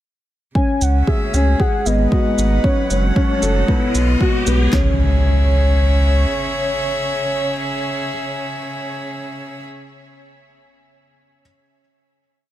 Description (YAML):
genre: piano and strings electronica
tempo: 115 BPM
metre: 4/4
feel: straight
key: C# minor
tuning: A4 = 439 Hz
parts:
  - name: warm velvety synth lead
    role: melody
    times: 0.6-9.6 s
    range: C#5 to G#5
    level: -25 LUFS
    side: equal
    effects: chorus
  - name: rich string quartet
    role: sustained chords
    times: 0.6-9.7 s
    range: B2 to F#5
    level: -25 LUFS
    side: equal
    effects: none
  - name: dark upright piano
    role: riff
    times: 0.6-11.4 s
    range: B3 to C#5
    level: -21 LUFS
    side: left 2 dB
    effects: none
  - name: deep house drum kit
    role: drums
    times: 0.6-4.8 s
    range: handclaps, kick drum, snare drum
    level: -18 LUFS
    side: equal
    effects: overdrive
  - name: riser and impact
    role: sound effects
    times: 2.6-9.7 s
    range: none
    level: -26 LUFS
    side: right 1 dB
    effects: none
  - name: warm sub bass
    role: bass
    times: 0.8-6.3 s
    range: F#1 to C#2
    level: -15 LUFS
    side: equal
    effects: tube saturation, sidechain pumping
  - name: shaker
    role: drums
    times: 0.8-4.6 s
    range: none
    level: -29 LUFS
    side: right 3 dB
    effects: overdrive
room: little or no reverb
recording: none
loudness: -15 LUFS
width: side -13 dB against mid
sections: 0.6-4.7 build; 4.7-8.9 final chord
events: build-up 0.6-4.7; riser 2.6-4.7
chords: 0.6 C#m; 1.6 G#m7; 2.6 F#m; 3.7 B; 4.7 C#m